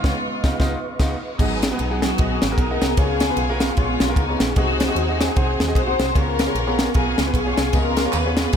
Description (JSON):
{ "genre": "uptempo gospel", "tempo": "151 BPM", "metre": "4/4", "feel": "swing 60% on 8ths", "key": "unclear", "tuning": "A4 = 444 Hz", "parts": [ { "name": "clean electric guitar", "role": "melody", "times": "0.0-0.9 s", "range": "E#4", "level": "-34 LUFS", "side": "right 4 dB", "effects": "none" }, { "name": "warm symphonic string section", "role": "melody", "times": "0.0-8.6 s", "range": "F#3 to B#4", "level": "-24 LUFS", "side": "left 4 dB", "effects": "none" }, { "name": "clear baby grand piano", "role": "accompaniment", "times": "0.0-8.6 s", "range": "G#2 to F#5", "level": "-27 LUFS", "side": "equal", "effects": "none" }, { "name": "mellow tonewheel organ", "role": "sustained chords", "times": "0.0-8.6 s", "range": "B3 to D#6", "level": "-29 LUFS", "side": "right 5 dB", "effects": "slow rotary speaker, chorus vibrato" }, { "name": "metallic FM bass", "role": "bass", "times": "0.0-8.6 s", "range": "G#1 to D#2", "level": "-25 LUFS", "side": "equal", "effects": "none" }, { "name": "crisp fusion drum kit", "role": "drums", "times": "0.0-8.6 s", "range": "crash cymbal, kick drum, ride cymbal, snare drum", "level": "-21 LUFS", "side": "equal", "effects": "none" }, { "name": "tambourine and handclaps", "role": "percussion", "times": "7.7-8.6 s", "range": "none", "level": "-32 LUFS", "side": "right 5 dB", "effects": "none" } ], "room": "light reverb", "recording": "none", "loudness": "-18 LUFS", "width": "side -8 dB against mid", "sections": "0.0-1.4 A section; 1.4-8.6 B section", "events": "band accent 0.0-1.4", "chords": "0.0 C#9; 1.4 G#m7; 3.0 C#7; 4.6 G#7/B#; 6.2 C#7" }